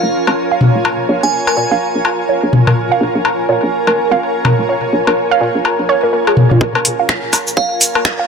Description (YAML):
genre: minimal techno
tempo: 125 BPM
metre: 4/4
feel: swing 60% on 16ths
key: Bb minor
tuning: A4 = 443 Hz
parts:
  - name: glassy synth bell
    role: melody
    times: 0.0-1.7, 7.6-7.7 s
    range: F5 to Ab5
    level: -20 LUFS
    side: right 2 dB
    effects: chorus, tape echo
  - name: hollow knocking FM bass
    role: bass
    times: 0.0-6.6 s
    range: F1 to Bb2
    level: -18 LUFS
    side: equal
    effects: tube saturation, sidechain pumping, high-pass filter
  - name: granular cloud pad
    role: texture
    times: 0.0-8.3 s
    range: F4 to Ab5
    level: -17 LUFS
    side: right 2 dB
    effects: built-in reverb, sidechain pumping
  - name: resonant blip pluck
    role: riff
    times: 0.3-8.2 s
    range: F4 to Bb5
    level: -18 LUFS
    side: right 2 dB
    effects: chorus, sidechain pumping, digital delay
  - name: electronic woodblock and toms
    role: percussion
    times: 0.3-8.0 s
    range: none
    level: -15 LUFS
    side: left 2 dB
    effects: tape echo
  - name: electronic kick drum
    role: drums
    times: 6.6-8.2 s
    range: none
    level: -18 LUFS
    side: right 1 dB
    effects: high-pass filter on kick
  - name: booming analog drum machine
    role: drums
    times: 6.8-8.2 s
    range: finger snaps, hi-hat, shaker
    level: -14 LUFS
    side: right 1 dB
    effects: low-pass filter on hats, low-pass filter on snare, low-pass filter on perc, low-pass filter on room
room: moderate lush hall reverb, RT60 2.5 s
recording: none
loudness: -11 LUFS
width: side -6 dB against mid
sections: 0.0-6.6 A section; 6.6-8.3 B section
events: filter sweep on synth pluck 0.0-6.6; build-up 6.6-8.3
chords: 0.0 Bbm7